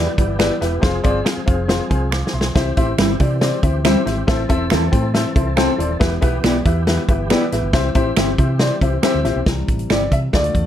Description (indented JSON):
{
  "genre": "uptempo 1960s-style soul",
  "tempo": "139 BPM",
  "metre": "4/4",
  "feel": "straight",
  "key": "C major",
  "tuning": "A4 = 443 Hz",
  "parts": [
    { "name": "warm upright piano", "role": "accompaniment", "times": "0.0-10.7 s", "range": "C3 to D6", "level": "-21 LUFS", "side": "left 3 dB", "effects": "none" },
    { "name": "tonewheel organ", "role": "sustained chords", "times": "0.0-9.4 s", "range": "E3 to A4", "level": "-29 LUFS", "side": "right 2 dB", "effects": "fast rotary speaker, overdrive, chorus vibrato" },
    { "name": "hollow-body short-scale fingered electric bass", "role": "bass", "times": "0.0-10.7 s", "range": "Eb1 to C3", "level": "-21 LUFS", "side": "equal", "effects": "none" },
    { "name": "natural country drum kit", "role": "drums", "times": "0.2-10.7 s", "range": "hi-hat, kick drum, snare drum", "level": "-19 LUFS", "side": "equal", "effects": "none" },
    { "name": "finger snaps", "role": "percussion", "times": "0.4-10.0 s", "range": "none", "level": "-27 LUFS", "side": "right 9 dB", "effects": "none" },
    { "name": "mellow electric guitar", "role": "stabs", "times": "3.0-10.0 s", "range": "G3 to A4", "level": "-21 LUFS", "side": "right 1 dB", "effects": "none" }
  ],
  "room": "light reverb",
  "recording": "dark, warm production",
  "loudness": "-15 LUFS",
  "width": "side -10 dB against mid",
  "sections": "0.0-9.5 A section; 9.5-10.7 B section",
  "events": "upright piano fill 1.7-2.6; drum fill 2.1-2.6; upright piano solo 9.5-10.7",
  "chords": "0.0 Em; 0.8 Fm; 2.6 C; 4.3 Am; 6.0 Em; 7.7 C"
}